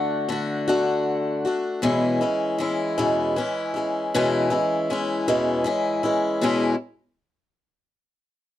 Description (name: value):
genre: rock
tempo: 52 BPM (dotted quarters)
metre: 6/8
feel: straight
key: E mixolydian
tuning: A4 = 440 Hz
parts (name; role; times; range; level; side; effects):
- clean lap steel guitar; melody; 0.0-1.4 s; F#5; -32 LUFS; left 4 dB; none
- picked swing-style acoustic guitar; accompaniment; 0.0-6.7 s; E2 to F#4; -21 LUFS; left 1 dB; none
room: light reverb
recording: dry, close 1970s-style studio recording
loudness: -21 LUFS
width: side -12 dB against mid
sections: 0.0-1.8 A section; 1.8-6.4 B section; 6.4-8.6 C section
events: none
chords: 0.0 D; 1.8 E6